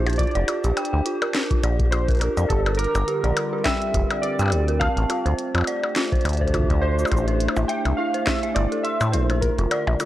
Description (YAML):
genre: IDM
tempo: 104 BPM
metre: 4/4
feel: swing 56% on 16ths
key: unclear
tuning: A4 = 443 Hz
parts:
  - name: warbly lo-fi synth keys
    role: melody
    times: 0.0-10.1 s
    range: A4 to G5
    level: -28 LUFS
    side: right 1 dB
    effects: chorus, vintage 12-bit sampler grit, analog delay
  - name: warbly tape-like pad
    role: sustained chords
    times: 0.0-10.1 s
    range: D3 to C5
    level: -30 LUFS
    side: right 1 dB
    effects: chorus, built-in reverb
  - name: dark detuned synth bell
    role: arpeggios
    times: 0.0-10.1 s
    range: E4 to D6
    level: -27 LUFS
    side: right 1 dB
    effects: chorus, tape echo
  - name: deep acid bass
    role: bass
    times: 0.0-10.0 s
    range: F1 to A2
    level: -22 LUFS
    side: equal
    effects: none
  - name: glitchy drum kit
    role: drums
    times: 0.1-10.1 s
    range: cabasa, hi-hat, percussion blips, snare drum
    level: -27 LUFS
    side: left 1 dB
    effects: none
  - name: electronic kick drum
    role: drums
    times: 0.2-9.6 s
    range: none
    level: -25 LUFS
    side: equal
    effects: overdrive
room: light reverb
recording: dry, gritty hardware recording, transformer saturation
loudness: -20 LUFS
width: side -14 dB against mid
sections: 0.0-10.1 A section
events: none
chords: 0.2 Bb6; 4.8 Dm7; 7.1 Am; 9.4 Bb6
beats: | 0.19 0.77 1.35 1.92 | 2.50 3.08 3.65 4.23 | 4.81 5.38 5.96 6.54 | 7.12 7.69 8.27 8.85 | 9.42 10.00